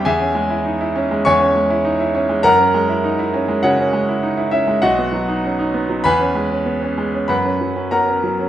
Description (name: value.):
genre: classical, virtuoso piano study.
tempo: 100 BPM.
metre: 4/4.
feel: uneven beats, rubato.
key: unclear.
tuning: A4 = 440 Hz.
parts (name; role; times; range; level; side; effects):
bright concert grand piano; solo; 0.0-8.5 s; B1 to C#6; -15 LUFS; equal; none.
room: wet recital hall reverb, RT60 1.5 s.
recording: none.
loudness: -15 LUFS.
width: side -12 dB against mid.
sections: 0.0-8.5 A section.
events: none.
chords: 0.1 C#m/E; 2.4 F#9; 4.8 B; 6.0 C#m/E; 7.3 F#.